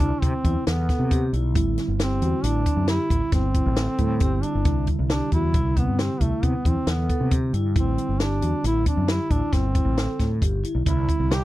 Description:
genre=progressive instrumental, band music in an uneven meter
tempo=135 BPM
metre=7/4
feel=straight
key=A minor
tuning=A4 = 440 Hz
part: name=mellow duduk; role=melody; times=0.0-11.4 s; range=A3 to G4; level=-27 LUFS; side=equal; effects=none
part: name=mellow tine electric piano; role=accompaniment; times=0.0-11.4 s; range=C3 to E4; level=-32 LUFS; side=right 9 dB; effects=none
part: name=vibraphone with soft mallets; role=arpeggios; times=0.0-11.4 s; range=C4 to A4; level=-31 LUFS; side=left 3 dB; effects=none
part: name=fretless electric bass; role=bass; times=0.0-11.4 s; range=G1 to C3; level=-24 LUFS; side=equal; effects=none
part: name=compact cocktail drum kit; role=drums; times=0.0-11.4 s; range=hi-hat, kick drum, snare drum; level=-24 LUFS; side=equal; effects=none
room=little or no reverb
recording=dry, close 1970s-style studio recording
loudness=-20 LUFS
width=side -16 dB against mid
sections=0.0-11.4 A section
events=none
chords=0.0 Cmaj7; 1.6 Am7; 4.7 Cmaj7; 7.8 Am7; 10.9 C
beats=0.22 0.67 1.11 | 1.55 2.00 2.44 2.88 3.33 3.77 4.21 | 4.66 5.10 5.54 5.99 6.43 6.87 7.31 | 7.76 8.20 8.64 9.09 9.53 9.97 10.42 | 10.86 11.30

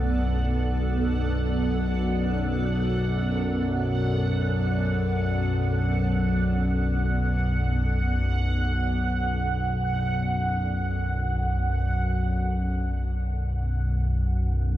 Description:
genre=dark ambient drone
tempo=free time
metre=none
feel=none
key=B minor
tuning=A4 = 439 Hz
part: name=granular cloud pad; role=sustained chords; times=0.0-12.3 s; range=B3 to D5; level=-34 LUFS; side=right 1 dB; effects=built-in reverb
part: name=analog drone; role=drone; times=0.0-14.8 s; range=B1 to F#2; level=-24 LUFS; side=equal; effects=chorus
part: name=bubbling stepped-filter texture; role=texture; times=0.0-14.8 s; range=F#5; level=-33 LUFS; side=right 4 dB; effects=chorus, built-in reverb
room=moderate huge ambient reverb, RT60 7.5 s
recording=none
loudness=-23 LUFS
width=side -13 dB against mid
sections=0.0-12.3 A section; 12.3-14.8 B section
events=fade-out on ambient pad 0.0-12.3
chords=0.0 Bm7; 12.3 B5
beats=free time

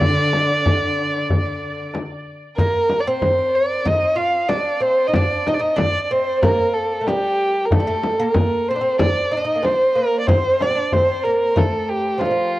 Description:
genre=Arabic maqam ensemble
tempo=94 BPM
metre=4/4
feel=straight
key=D maqam kurd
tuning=A4 = 440 Hz
part: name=dark violin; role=melody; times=0.0-12.6 s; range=F4 to F5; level=-19 LUFS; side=equal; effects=cassette tape, tape echo
part: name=oud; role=second line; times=0.0-12.6 s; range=F3 to F4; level=-23 LUFS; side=right 3 dB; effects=cassette tape
part: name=rich studio cello section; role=second line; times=0.0-1.9 s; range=D3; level=-24 LUFS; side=left 1 dB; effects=cassette tape
part: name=darbuka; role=percussion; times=0.0-12.6 s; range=none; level=-23 LUFS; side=equal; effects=none
part: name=frame drum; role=percussion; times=0.0-12.4 s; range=none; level=-23 LUFS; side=left 2 dB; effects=none
room=light reverb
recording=home recording on cassette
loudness=-16 LUFS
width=side -16 dB against mid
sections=0.0-2.6 A section; 2.6-12.6 B section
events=none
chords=none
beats=| 0.01 0.65 1.29 1.94 | 2.58 3.22 3.86 4.50 | 5.15 5.79 6.43 7.07 | 7.71 8.36 9.00 9.64 | 10.28 10.92 11.56 12.21

